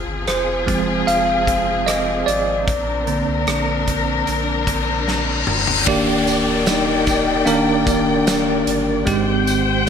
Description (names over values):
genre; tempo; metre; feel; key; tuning
pop ballad; 75 BPM; 4/4; straight; Eb major; A4 = 435 Hz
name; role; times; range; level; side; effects
warm studio string section; sustained chords; 0.0-9.9 s; Eb3 to G5; -22 LUFS; left 4 dB; none
warm sub bass; bass; 0.0-9.9 s; D1 to C2; -28 LUFS; left 1 dB; none
bell-like tine electric piano; accompaniment; 0.3-9.9 s; Ab2 to F5; -20 LUFS; right 3 dB; medium stereo tremolo
huge arena drum kit; drums; 0.3-9.9 s; crash cymbal, hi-hat, kick drum, rim click, snare drum, toms; -25 LUFS; equal; none
reverse cymbal and downlifter; sound effects; 4.6-9.9 s; none; -24 LUFS; left 4 dB; none
dark French horn section; second line; 5.9-9.9 s; C4 to Eb4; -22 LUFS; left 6 dB; digital delay
tambourine; percussion; 5.9-9.7 s; none; -31 LUFS; right 8 dB; none
room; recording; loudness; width
light reverb, small room ambience; none; -16 LUFS; side -7 dB against mid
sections
0.0-5.9 A section; 5.9-9.9 B section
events
tine electric piano solo 0.0-5.9; reverse cymbal 4.6-5.9; drum fill 5.1-5.9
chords
0.0 Fm; 2.7 Bbadd9; 5.9 Ebmaj7; 9.1 Abmaj7